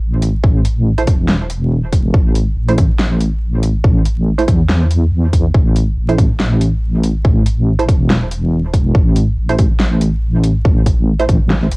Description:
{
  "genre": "deep dubstep",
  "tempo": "141 BPM",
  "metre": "4/4",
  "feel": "swing 56% on 16ths, half-time",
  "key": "A minor",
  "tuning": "A4 = 440 Hz",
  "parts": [
    { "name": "deep soft wobble bass", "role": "bass", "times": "0.0-11.8 s", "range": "E1 to E2", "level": "-14 LUFS", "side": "equal", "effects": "chorus" },
    { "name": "dubstep drum kit", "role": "drums", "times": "0.2-11.8 s", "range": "hi-hat, snare drum", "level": "-20 LUFS", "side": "equal", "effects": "small room reverb, cassette tape" },
    { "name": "electronic kick drum", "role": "drums", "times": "0.4-11.4 s", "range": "none", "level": "-13 LUFS", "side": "equal", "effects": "small room reverb, cassette tape" },
    { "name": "filtered dub chord stab", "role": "stabs", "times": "1.0-11.2 s", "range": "A3 to C5", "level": "-20 LUFS", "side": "right 4 dB", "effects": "wide subtle chorus, dub echo" }
  ],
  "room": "little or no reverb",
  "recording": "home recording on cassette, vinyl crackle",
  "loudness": "-11 LUFS",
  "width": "side -26 dB against mid",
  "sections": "0.0-11.8 A section",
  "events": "none",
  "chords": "0.0 A5"
}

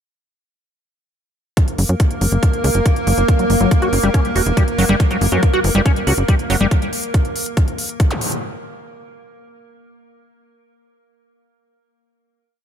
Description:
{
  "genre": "psychedelic trance",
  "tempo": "140 BPM",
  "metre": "4/4",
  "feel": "straight",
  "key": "F# major",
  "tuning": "A4 = 442 Hz",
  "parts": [
    { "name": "evolving wavetable pad", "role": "sustained chords", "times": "1.8-6.7 s", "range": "A#3 to A#4", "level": "-22 LUFS", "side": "right 1 dB", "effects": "chorus, built-in reverb, sidechain pumping" },
    { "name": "electronic hi-hat", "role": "drums", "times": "1.6-8.4 s", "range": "none", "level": "-26 LUFS", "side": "equal", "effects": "overdrive" },
    { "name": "electronic kick drum", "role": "drums", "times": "1.6-8.1 s", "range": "none", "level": "-17 LUFS", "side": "equal", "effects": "none" },
    { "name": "tight sequencer bass", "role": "bass", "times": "1.8-6.7 s", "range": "E1 to F#2", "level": "-16 LUFS", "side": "equal", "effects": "tube saturation" },
    { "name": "liquid acid bass", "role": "riff", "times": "3.4-6.7 s", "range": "F#3 to F#4", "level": "-20 LUFS", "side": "left 1 dB", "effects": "chorus, auto-pan, cassette tape, sidechain pumping, digital delay" },
    { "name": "vowel-sweep wobble bass", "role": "second line", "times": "5.3-5.8 s", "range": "A#3", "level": "-32 LUFS", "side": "right 2 dB", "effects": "none" },
    { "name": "zap", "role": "sound effects", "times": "8.1-8.2 s", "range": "none", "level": "-26 LUFS", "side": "equal", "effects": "none" }
  ],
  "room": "digital ambience",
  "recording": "none",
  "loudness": "-14 LUFS",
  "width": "side -8 dB against mid",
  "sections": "1.6-8.4 groove",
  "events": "none",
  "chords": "1.6 F#5"
}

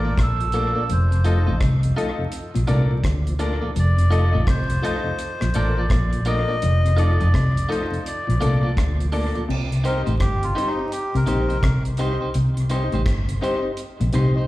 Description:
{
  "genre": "roots reggae",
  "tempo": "84 BPM",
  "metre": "4/4",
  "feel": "swing 62% on 16ths",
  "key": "C dorian",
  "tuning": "A4 = 440 Hz",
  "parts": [
    { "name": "melodica", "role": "melody", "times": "0.0-11.8 s", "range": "Eb4 to Eb5", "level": "-28 LUFS", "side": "equal", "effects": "dub echo, slapback echo" },
    { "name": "clean electric guitar", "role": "accompaniment", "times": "0.0-14.4 s", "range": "Eb4 to Eb5", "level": "-32 LUFS", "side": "right 3 dB", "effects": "spring reverb, dub echo, slapback echo" },
    { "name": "mellow tonewheel organ", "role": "accompaniment", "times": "0.0-14.4 s", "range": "F2 to Eb4", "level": "-29 LUFS", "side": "left 1 dB", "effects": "slow rotary speaker, tube saturation, slapback echo" },
    { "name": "mellow electric guitar", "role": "riff", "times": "0.0-14.4 s", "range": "F2 to D3", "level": "-29 LUFS", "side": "left 2 dB", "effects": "analog chorus, slapback echo" },
    { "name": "bright upright piano", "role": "stabs", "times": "0.0-14.4 s", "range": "Bb3 to C5", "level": "-30 LUFS", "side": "left 4 dB", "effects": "slapback echo" },
    { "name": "vintage muted fingered electric bass", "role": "bass", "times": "0.0-14.5 s", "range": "F1 to D2", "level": "-20 LUFS", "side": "equal", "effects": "none" },
    { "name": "deep reggae drum kit", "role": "drums", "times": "0.2-14.3 s", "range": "crash cymbal, hi-hat, kick drum, rim click", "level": "-26 LUFS", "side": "equal", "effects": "none" }
  ],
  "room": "light reverb, studio reverb",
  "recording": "live gig heard through the venue's PA, club reverb, vinyl crackle",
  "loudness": "-18 LUFS",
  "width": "side -17 dB against mid",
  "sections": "0.0-9.5 A section; 9.5-14.5 B section",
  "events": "melodica solo 9.5-14.5",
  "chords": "0.0 Bbmaj7; 0.9 F7; 2.3 Bbmaj7; 3.8 F7; 5.2 Bbmaj7; 6.6 F7; 8.1 Bbmaj7; 9.5 Cm"
}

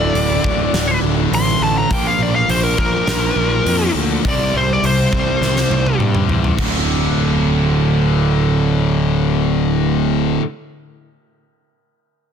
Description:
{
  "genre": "hard rock",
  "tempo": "103 BPM",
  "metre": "4/4",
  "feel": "straight",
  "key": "D minor",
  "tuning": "A4 = 439 Hz",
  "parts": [
    { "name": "smooth overdriven lead guitar", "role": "melody", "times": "0.0-6.0 s", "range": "Bb4 to C6", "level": "-19 LUFS", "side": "left 1 dB", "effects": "none" },
    { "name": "high-gain distorted guitar", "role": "riff", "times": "0.0-10.4 s", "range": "D2 to C4", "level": "-21 LUFS", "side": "left 11 dB", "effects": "distortion" },
    { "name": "overdriven semi-hollow guitar", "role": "riff", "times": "0.0-10.4 s", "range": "D2 to C4", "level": "-20 LUFS", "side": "right 9 dB", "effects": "none" },
    { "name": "fuzz picked electric bass", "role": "bass", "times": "0.0-10.4 s", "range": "D1 to G2", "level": "-20 LUFS", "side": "equal", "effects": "overdrive" },
    { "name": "huge arena drum kit", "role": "drums", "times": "0.2-6.7 s", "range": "crash cymbal, hi-hat, kick drum, snare drum, toms", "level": "-21 LUFS", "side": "equal", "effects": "soft clipping on kick" }
  ],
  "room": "light reverb, small room reverb",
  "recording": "dense, heavily limited modern master",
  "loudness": "-14 LUFS",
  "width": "side -7 dB against mid",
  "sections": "0.0-6.6 A section; 6.6-8.9 B section",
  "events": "lead electric guitar solo 0.0-6.6; drum fill 5.4-6.6",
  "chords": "0.0 D5; 1.9 Bb5; 4.2 C5; 6.6 D5"
}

